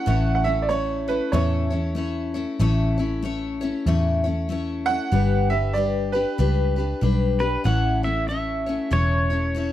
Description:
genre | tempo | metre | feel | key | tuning
honky-tonk and classic country | 95 BPM | 4/4 | swing 61% on 8ths | A mixolydian | A4 = 441 Hz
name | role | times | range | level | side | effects
bright upright piano | second line | 0.0-7.4 s | B4 to F#5 | -25 LUFS | right 5 dB | none
picked steel-string acoustic guitar | accompaniment | 0.0-9.7 s | A2 to C#5 | -25 LUFS | left 4 dB | none
vintage muted picked electric bass | bass | 0.1-9.7 s | E1 to E2 | -23 LUFS | equal | none
pedal steel guitar | melody | 7.4-9.7 s | B4 to F#5 | -25 LUFS | right 1 dB | none
room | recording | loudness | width
studio ambience | dry, close 1970s-style studio recording | -20 LUFS | side -12 dB against mid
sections
0.0-7.7 A section; 7.7-9.7 B section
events
upright piano solo 0.0-7.7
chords
0.0 A; 5.1 G; 7.7 A

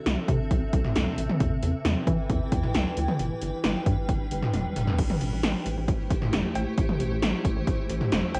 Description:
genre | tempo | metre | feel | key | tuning
synth-pop | 134 BPM | 4/4 | straight | A minor | A4 = 440 Hz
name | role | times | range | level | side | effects
granular cloud pad | sustained chords | 0.0-8.4 s | C3 to G5 | -35 LUFS | equal | built-in reverb
rubbery square bass | bass | 0.1-8.4 s | E1 to E3 | -32 LUFS | equal | none
80s electronic pad drums | drums | 0.1-8.4 s | cowbell, crash cymbal, hi-hat, kick drum, snare drum, toms | -28 LUFS | equal | gated reverb on snare and toms
room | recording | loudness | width
moderate studio reverb, RT60 0.5 s | home recording on cassette, vinyl crackle, nothing above 10.7 kHz | -26 LUFS | mono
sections
0.0-5.0 A section; 5.0-8.4 B section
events
drum fill 4.5-5.0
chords
0.0 Am/C; 1.4 Em; 3.2 G; 5.0 Am7

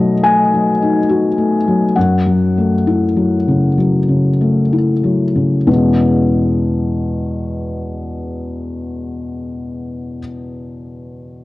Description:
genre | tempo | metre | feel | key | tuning
neoclassical minimalist piano | 62-72 BPM | 4/4 | rubato | E major | A4 = 440 Hz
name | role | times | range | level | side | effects
felt-muted upright piano | solo | 0.0-11.4 s | E2 to G#5 | -14 LUFS | left 1 dB | none
room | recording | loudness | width
studio reverb | home recording on cassette | -12 LUFS | side -18 dB against mid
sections
0.0-5.7 A section; 5.7-9.3 B section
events
slowing down 0.0-5.7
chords
0.0 B7; 2.0 F#m7; 5.7 E6

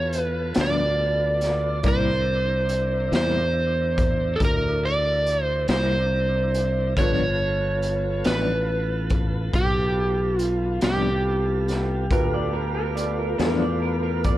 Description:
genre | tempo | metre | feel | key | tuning
slow blues | 47 BPM (dotted quarters) | 12/8 | straight | G mixolydian | A4 = 440 Hz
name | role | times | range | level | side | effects
overdriven slide guitar | melody | 0.0-14.2 s | G4 to D5 | -25 LUFS | right 2 dB | none
warm upright piano | accompaniment | 0.0-14.4 s | E4 to D5 | -34 LUFS | right 2 dB | none
tonewheel organ | sustained chords | 0.0-14.4 s | A3 to Bb4 | -32 LUFS | equal | slow rotary speaker
fingered electric bass | bass | 0.0-14.4 s | G1 to E2 | -25 LUFS | left 1 dB | none
raw garage drum kit | drums | 0.1-14.4 s | hi-hat, kick drum, snare drum | -26 LUFS | left 1 dB | none
clean electric guitar | accompaniment | 0.6-13.7 s | G2 to E4 | -30 LUFS | left 3 dB | tremolo
electric guitar through a small old amp | second line | 12.1-14.4 s | Bb4 to D5 | -29 LUFS | right 1 dB | lush chorus
room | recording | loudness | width
light reverb | none | -20 LUFS | side -14 dB against mid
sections
0.0-14.4 A section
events
none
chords
0.0 G7; 1.8 C7; 7.0 G7

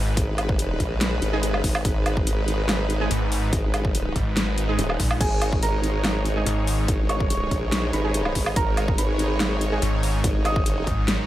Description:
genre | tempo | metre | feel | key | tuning
heavy wobble dubstep | 143 BPM | 4/4 | half-time | G# minor | A4 = 441 Hz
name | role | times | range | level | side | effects
supersaw pad | sustained chords | 0.0-11.3 s | G#3 to C#5 | -30 LUFS | equal | sidechain pumping
snarling distorted saw bass | bass | 0.0-0.2, 3.1-6.9, 9.8-11.2 s | G#1 to A#1 | -24 LUFS | equal | distortion, overdrive
formant-sweep wobble bass | bass | 0.2-10.9 s | D#1 to A#1 | -25 LUFS | equal | chorus, overdrive
dubstep drum kit | drums | 0.2-11.2 s | crash cymbal, hi-hat, snare drum, woodblock | -27 LUFS | equal | none
electronic kick drum | drums | 0.2-11.0 s | none | -25 LUFS | equal | none
orchestra-hit-like synth stab | stabs | 1.3-9.8 s | G#3 to G#4 | -31 LUFS | right 3 dB | built-in reverb, digital delay
felt-muted upright piano | melody | 5.2-11.2 s | G#4 to D#6 | -30 LUFS | right 3 dB | digital delay
room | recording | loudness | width
little or no reverb | none | -20 LUFS | side -14 dB against mid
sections
0.0-11.3 A section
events
none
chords
0.0 G#5

